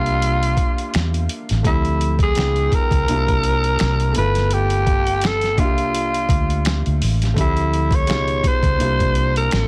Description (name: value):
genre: R&B, neo-soul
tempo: 84 BPM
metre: 4/4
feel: swing 56% on 16ths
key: unclear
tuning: A4 = 438 Hz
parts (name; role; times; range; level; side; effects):
- growling tenor saxophone; melody; 0.0-9.7 s; E4 to C#5; -24 LUFS; equal; tape echo
- warm concert grand piano; accompaniment; 0.0-9.7 s; B2 to G5; -29 LUFS; equal; none
- vintage muted fingered electric bass; bass; 0.0-9.7 s; G1 to E2; -23 LUFS; equal; none
- boom bap sampler-style drum kit; drums; 0.1-9.7 s; finger snaps, hi-hat, kick drum, snare drum; -24 LUFS; equal; none
room: little or no reverb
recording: dense, heavily limited modern master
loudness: -19 LUFS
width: mono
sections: 0.0-9.7 A section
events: none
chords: 0.0 C7sus4; 1.6 Dm9; 2.4 C#9; 3.1 C7sus4; 4.2 G13; 5.6 C7sus4; 7.4 Dm9; 8.1 C#9; 8.8 C7sus4